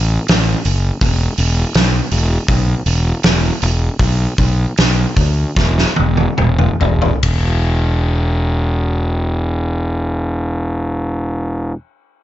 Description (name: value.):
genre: quiet-loud alternative rock.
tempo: 70-82 BPM.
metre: 4/4.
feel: straight.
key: unclear.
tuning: A4 = 440 Hz.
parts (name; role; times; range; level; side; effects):
fuzz fingered electric bass; bass; 0.0-11.7 s; E1 to D2; -15 LUFS; equal; overdrive.
loose indie drum kit; drums; 0.3-7.4 s; hi-hat, kick drum, ride cymbal, snare drum, toms; -17 LUFS; equal; none.
room: little or no reverb.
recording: nothing above 7.6 kHz.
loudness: -14 LUFS.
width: side -13 dB against mid.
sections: 0.0-7.2 A section; 7.2-10.7 B section.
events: slowing down 1.0-7.2; drum fill 5.6-7.2.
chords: none.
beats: 0.29 | 1.02 1.75 2.48 3.23 | 3.99 4.77 5.56 6.38 | 7.23 8.09 8.96 9.82.